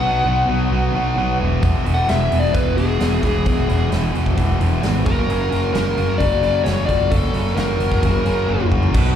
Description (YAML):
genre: blues rock power trio and southern rock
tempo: 131 BPM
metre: 4/4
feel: straight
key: unclear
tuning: A4 = 444 Hz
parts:
  - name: smooth overdriven lead guitar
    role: melody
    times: 0.0-8.7 s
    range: G#4 to F#5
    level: -22 LUFS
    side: left 2 dB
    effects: slapback echo, analog delay
  - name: lightly driven lead guitar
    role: second line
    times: 0.0-8.7 s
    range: B3 to B4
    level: -33 LUFS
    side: right 4 dB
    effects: none
  - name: cranked stack guitar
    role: riff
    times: 0.0-9.2 s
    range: E2 to B3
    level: -22 LUFS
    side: equal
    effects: overdrive, slapback echo
  - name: fuzz fingered electric bass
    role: bass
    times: 0.0-9.2 s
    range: E1 to B1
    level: -20 LUFS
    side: equal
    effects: overdrive
  - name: big rock drum kit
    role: drums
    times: 1.6-9.1 s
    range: crash cymbal, hi-hat, kick drum, snare drum, toms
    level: -23 LUFS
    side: equal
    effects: none
  - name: overdriven tonewheel organ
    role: sustained chords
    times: 8.9-9.2 s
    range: F#4 to F#5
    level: -29 LUFS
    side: right 6 dB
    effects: slow rotary speaker, chorus vibrato
room: small room ambience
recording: live gig heard through the venue's PA, club reverb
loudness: -16 LUFS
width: side -9 dB against mid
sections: 0.0-8.9 A section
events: drum fill 8.5-8.9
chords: 0.0 B5; 1.4 E; 5.1 F#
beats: 0.26 0.72 1.18 | 1.63 2.09 2.55 3.01 | 3.46 3.92 4.38 4.83 | 5.29 5.75 6.21 6.66 | 7.12 7.58 8.03 8.49 | 8.94